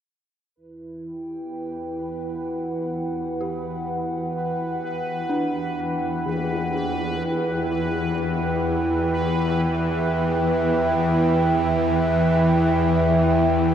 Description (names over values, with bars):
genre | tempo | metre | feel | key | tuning
dark ambient drone | 63 BPM | 4/4 | straight | E minor | A4 = 440 Hz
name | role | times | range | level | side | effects
dark analog pad | sustained chords | 0.6-13.7 s | E4 to G5 | -24 LUFS | right 2 dB | lush chorus
bowed-like drone | drone | 1.6-13.7 s | E2 to E3 | -24 LUFS | left 1 dB | built-in reverb
bubbling stepped-filter texture | texture | 0.6-13.7 s | B4 | -32 LUFS | right 2 dB | chorus, built-in reverb
dark detuned synth bell | arpeggios | 3.4-13.7 s | D4 to G4 | -34 LUFS | equal | chorus, diffuse ambient delay
tam-tam | percussion | 6.3-6.5 s | none | -34 LUFS | left 2 dB | low-pass filter on cymbals
room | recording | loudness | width
wet huge ambient reverb, RT60 8.6 s | dark, warm production | -20 LUFS | side -9 dB against mid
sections
0.6-13.7 A section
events
fade-in on synth drone 0.6-13.7; fade-in on synth texture 0.6-13.7; fade-in on synth bell 0.6-13.7; fade-in on drum 0.6-13.7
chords
0.6 Em